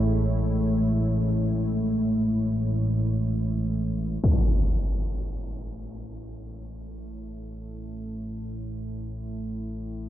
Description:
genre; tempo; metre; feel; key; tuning
dark ambient drone; free time; none; none; A major; A4 = 439 Hz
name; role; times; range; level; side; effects
deep dark ambient pad; sustained chords; 0.0-10.1 s; A2 to C#5; -35 LUFS; right 1 dB; chorus, built-in reverb
analog drone; drone; 0.0-10.1 s; A1 to A2; -27 LUFS; equal; chorus
impact; percussion; 4.2-4.4 s; none; -24 LUFS; equal; low-pass filter on sfx
room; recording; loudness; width
moderate huge ambient reverb, RT60 8.5 s; none; -24 LUFS; side -12 dB against mid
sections
0.0-4.2 A section; 4.2-10.1 A section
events
none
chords
0.0 C#m/A; 4.2 A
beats
free time

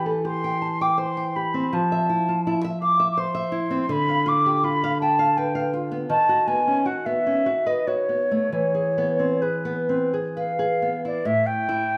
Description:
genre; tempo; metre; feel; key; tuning
romantic duo for flute and classical guitar; 61-84 BPM; 3/4; rubato; unclear; A4 = 440 Hz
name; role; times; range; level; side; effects
mellow concert flute; melody; 0.0-12.0 s; B4 to D6; -25 LUFS; equal; none
nylon-string guitar; accompaniment; 0.0-12.0 s; A2 to A5; -27 LUFS; equal; none
room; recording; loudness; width
moderate recital hall reverb, RT60 1.6 s; none; -23 LUFS; mono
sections
0.0-11.3 A section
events
none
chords
0.0 C/E; 1.7 Fmaj7; 3.9 Bdim/D; 6.1 B/D#; 8.5 E; 11.3 A5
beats
0.27 1.00 | 1.74 2.48 3.19 | 3.92 4.65 5.37 | 6.10 6.86 7.67 | 8.53 9.42 10.37 | 11.26

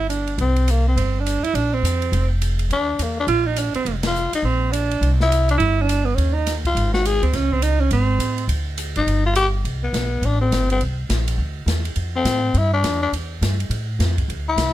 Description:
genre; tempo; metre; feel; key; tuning
jazz, small-group swing and bop; 207 BPM; 4/4; swing 61% on 8ths; C major; A4 = 435 Hz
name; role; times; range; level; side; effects
mellow alto saxophone; second line; 0.0-8.5 s; B3 to F4; -22 LUFS; right 5 dB; none
upright bass; bass; 0.0-14.7 s; F1 to A2; -20 LUFS; equal; none
open jazz drum kit; drums; 0.1-14.7 s; hi-hat, kick drum, ride cymbal, snare drum; -28 LUFS; equal; none
growling tenor saxophone; melody; 0.4-14.7 s; Bb3 to Ab4; -21 LUFS; left 3 dB; none
room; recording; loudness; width
little or no reverb; none; -18 LUFS; side -14 dB against mid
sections
0.4-9.6 A section; 9.6-14.7 B section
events
band accent 4.0; tenor saxophone solo 9.6-14.7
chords
0.4 C5; 1.6 Bbsus2; 2.7 Eb5; 3.9 F5; 4.4 Bbadd9; 5.0 C; 6.2 Dbsus2/Eb; 6.8 Ab7(b5, no3); 7.3 Db5; 8.5 Ab5; 9.1 Eb/G; 9.6 C5; 10.8 C9; 12.0 F69; 13.1 Em; 13.7 F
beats
0.10 | 0.39 0.68 0.97 1.26 | 1.55 1.84 2.13 2.42 | 2.71 3.00 3.29 3.57 | 3.86 4.15 4.44 4.73 | 5.02 5.31 5.60 5.89 | 6.17 6.46 6.75 7.04 | 7.33 7.62 7.91 8.20 | 8.49 8.78 9.07 9.36 | 9.65 9.94 10.22 10.52 | 10.80 11.09 11.38 11.67 | 11.96 12.25 12.54 12.83 | 13.12 13.41 13.70 13.99 | 14.28 14.57

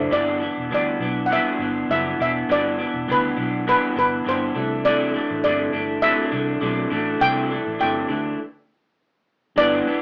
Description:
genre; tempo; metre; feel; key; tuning
indie pop, bedroom pop; 102 BPM; 4/4; swing 55% on 16ths; G major; A4 = 441 Hz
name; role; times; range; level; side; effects
steel pan; melody; 0.0-10.0 s; B4 to G5; -24 LUFS; equal; none
electric guitar through a small old amp; accompaniment; 0.0-10.0 s; G2 to D4; -25 LUFS; equal; vibrato effect
mellow tine electric piano; accompaniment; 0.0-0.3, 9.6-10.0 s; D4 to E5; -28 LUFS; equal; none
vintage muted fingered electric bass; bass; 0.0-9.8 s; E1 to D2; -34 LUFS; equal; none
room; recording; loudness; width
wet studio ambience, RT60 0.5 s; band playing live in one room, AM radio sound; -22 LUFS; mono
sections
0.1-9.6 A section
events
stop 8.4-9.6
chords
0.1 G6; 4.5 C69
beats
| 0.12 0.71 1.30 1.89 | 2.48 3.07 3.66 4.25 | 4.84 5.43 6.03 6.62 | 7.21 7.80 8.39 8.98 | 9.57

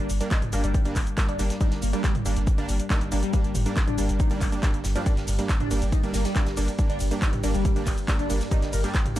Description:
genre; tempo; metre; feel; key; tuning
driving peak-time techno; 139 BPM; 4/4; straight; G minor; A4 = 438 Hz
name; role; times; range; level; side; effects
overdriven synth lead; riff; 0.0-9.0 s; F3 to Eb4; -33 LUFS; left 1 dB; phaser, tube saturation, wide subtle chorus, sidechain pumping, dub echo
supersaw stab; stabs; 0.0-9.2 s; G3 to D4; -32 LUFS; right 2 dB; sidechain pumping, dub echo
saturated sub bass; bass; 0.0-9.2 s; G1; -28 LUFS; equal; overdrive, sidechain pumping, low-pass filter
deep dark ambient pad; drone; 0.0-9.2 s; G2 to G3; -35 LUFS; equal; chorus, built-in reverb, sidechain pumping
punchy analog drum machine; drums; 0.1-9.2 s; handclaps, hi-hat, ride cymbal, shaker, toms; -32 LUFS; equal; none
tight metal drum kit; drums; 0.1-9.2 s; hi-hat, snare drum; -45 LUFS; right 2 dB; none
electronic kick drum; drums; 0.3-9.0 s; none; -24 LUFS; equal; none
room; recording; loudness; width
little or no reverb; dark, warm production; -22 LUFS; side -14 dB against mid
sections
0.0-9.2 A section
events
none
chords
0.0 Gm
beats
0.31 0.74 1.18 | 1.61 2.04 2.47 2.90 | 3.33 3.77 4.20 4.63 | 5.06 5.49 5.92 6.36 | 6.79 7.22 7.65 8.08 | 8.51 8.95

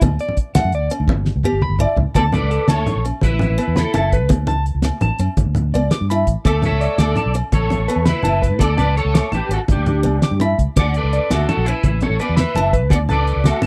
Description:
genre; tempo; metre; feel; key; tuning
highlife guitar band; 112 BPM (dotted quarters); 12/8; straight; D major; A4 = 442 Hz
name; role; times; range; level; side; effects
picked acoustic archtop guitar; accompaniment; 0.0-13.7 s; A3 to E4; -27 LUFS; equal; none
fingered electric bass; bass; 0.0-13.7 s; F#1 to A2; -22 LUFS; equal; none
cloth-damped thuddy drum kit; drums; 0.0-13.7 s; hi-hat, kick drum, snare drum, toms; -21 LUFS; equal; none
agogo bells; percussion; 0.0-13.6 s; none; -35 LUFS; equal; none
congas; percussion; 0.0-13.7 s; none; -24 LUFS; equal; none
electric guitar at the edge of break-up; arpeggios; 0.2-13.7 s; G4 to D6; -26 LUFS; equal; slapback echo
electric guitar at the edge of break-up; melody; 2.2-13.6 s; D4 to F#5; -26 LUFS; equal; ensemble chorus
mellow trumpet; second line; 2.2-13.6 s; D4 to D5; -30 LUFS; equal; none
room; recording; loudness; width
little or no reverb; dry, close 1970s-style studio recording; -18 LUFS; mono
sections
0.0-2.2 A section; 2.2-13.7 B section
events
drum fill 1.1-2.2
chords
0.0 D; 1.1 G; 2.2 D5; 3.2 Asus2; 4.3 D5; 5.4 G; 6.5 D5; 7.5 Asus2; 8.6 D5; 9.7 G; 10.8 D; 11.8 Asus2; 12.9 D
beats
| 0.02 0.56 1.09 1.62 | 2.16 2.70 3.23 3.77 | 4.31 4.84 5.38 5.92 | 6.46 7.00 7.53 8.07 | 8.61 9.15 9.69 10.22 | 10.76 11.30 11.84 12.38 | 12.91 13.45

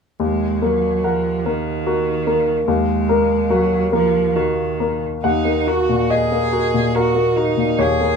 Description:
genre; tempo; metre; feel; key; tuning
neoclassical piano and strings; 71 BPM; 3/4; uneven beats, rubato; Eb minor; A4 = 440 Hz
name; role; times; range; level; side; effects
rich cello; second line; 0.2-8.2 s; Eb3 to Ab4; -21 LUFS; right 8 dB; none
clear grand piano; accompaniment; 0.2-8.2 s; Eb2 to Gb5; -17 LUFS; left 2 dB; none
room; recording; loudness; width
moderate studio reverb, RT60 0.6 s; minimal, uncompressed stereo recording; -16 LUFS; side -6 dB against mid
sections
0.2-5.2 A section; 5.2-8.2 B section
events
none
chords
0.2 Ebm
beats
| 0.21 1.05 1.86 | 2.67 3.51 4.36 | 5.25 6.11 6.96 | 7.79

